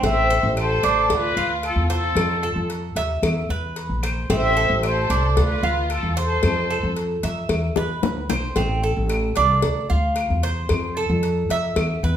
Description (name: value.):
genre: latin, Cuban son and guajira.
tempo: 112 BPM.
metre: 4/4.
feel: straight.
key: A minor.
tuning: A4 = 438 Hz.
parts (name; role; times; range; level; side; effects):
Cuban tres; arpeggios; 0.0-12.2 s; C4 to E5; -24 LUFS; right 3 dB; none.
upright bass; bass; 0.0-12.2 s; A1 to F2; -23 LUFS; equal; none.
cowbell and bongos; percussion; 0.0-12.0 s; none; -28 LUFS; left 4 dB; none.
trumpet with plunger mute; melody; 0.1-7.0 s; A4 to E5; -24 LUFS; left 2 dB; none.
rich studio violin section; second line; 0.1-7.0 s; F4 to C5; -28 LUFS; left 2 dB; none.
claves; percussion; 0.6-12.0 s; none; -34 LUFS; left 2 dB; none.
room: wet large studio reverb, RT60 0.9 s.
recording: band playing live in one room.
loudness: -19 LUFS.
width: side -10 dB against mid.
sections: 0.0-12.2 A section.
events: drum fill 7.8-8.6.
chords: 0.0 Am; 1.1 Dm; 2.2 F; 3.2 E5; 4.3 Am; 5.4 Dm; 6.4 F; 7.5 E5; 8.6 Am; 9.6 Dm; 10.7 F.